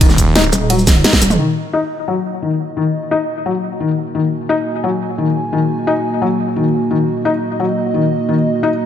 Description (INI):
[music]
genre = dark technical drum and bass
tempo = 174 BPM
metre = 4/4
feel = straight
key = Eb minor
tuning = A4 = 441 Hz
[part]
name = felt-muted upright piano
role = arpeggios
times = 0.0-8.7 s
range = Eb3 to Eb4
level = -17 LUFS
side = left 4 dB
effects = sidechain pumping, low-pass filter, ping-pong delay
[part]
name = snarling distorted saw bass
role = bass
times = 0.0-0.5 s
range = Eb1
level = -15 LUFS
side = right 1 dB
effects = distortion, overdrive, sidechain pumping
[part]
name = dubstep drum kit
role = drums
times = 0.0-1.4 s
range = hi-hat, ride cymbal, shaker, snare drum, toms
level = -15 LUFS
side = right 1 dB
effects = studio reverb
[part]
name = electronic kick drum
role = drums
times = 0.0-1.2 s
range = none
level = -12 LUFS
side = right 1 dB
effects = studio reverb
[part]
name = pulsing pluck wobble bass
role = bass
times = 0.5-1.4 s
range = Eb1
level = -15 LUFS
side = right 1 dB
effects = chorus, tube saturation
[part]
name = dark analog pad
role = sustained chords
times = 1.4-8.9 s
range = Bb3 to Ab5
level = -20 LUFS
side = right 3 dB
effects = chorus, sidechain pumping
[sound]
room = light reverb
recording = none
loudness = -14 LUFS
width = side -10 dB against mid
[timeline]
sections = 0.0-1.4 A section; 1.4-8.9 B section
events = drop 0.0-1.4; drum fill 0.9-1.4; band accent 1.0; filter sweep on analog synth pad 1.4-8.9; filter sweep on felt piano 1.4-8.9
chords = 0.0 N.C.; 1.4 Ebm